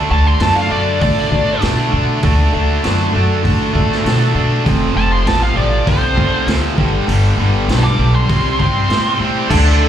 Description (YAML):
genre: blues rock power trio and southern rock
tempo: 99 BPM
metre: 4/4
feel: straight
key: unclear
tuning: A4 = 440 Hz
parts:
  - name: overdriven tonewheel organ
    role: sustained chords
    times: 0.0-9.9 s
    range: A3 to F#5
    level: -24 LUFS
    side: right 3 dB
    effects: chorus vibrato, slow rotary speaker
  - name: tight distorted guitar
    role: riff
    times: 0.0-9.9 s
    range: F2 to D4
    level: -18 LUFS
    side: equal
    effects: distortion, slapback echo
  - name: upright bass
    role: bass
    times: 0.0-9.9 s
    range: F1 to B2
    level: -16 LUFS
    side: equal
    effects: none
  - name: bluesy overdriven lead guitar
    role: melody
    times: 0.1-9.2 s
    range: C5 to D6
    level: -20 LUFS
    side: equal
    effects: wah, distortion, slapback echo, digital delay
  - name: raw garage drum kit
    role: drums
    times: 0.4-9.6 s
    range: crash cymbal, hi-hat, kick drum, snare drum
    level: -21 LUFS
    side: equal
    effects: none
room: small room ambience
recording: live gig heard through the venue's PA, club reverb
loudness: -12 LUFS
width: side -10 dB against mid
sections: 0.0-9.5 A section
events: none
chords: 0.0 D; 4.7 F; 6.8 G; 8.3 C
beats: 0.41 1.02 1.62 | 2.23 2.84 3.44 4.05 | 4.66 5.26 5.87 6.47 | 7.08 7.68 8.29 8.89 | 9.50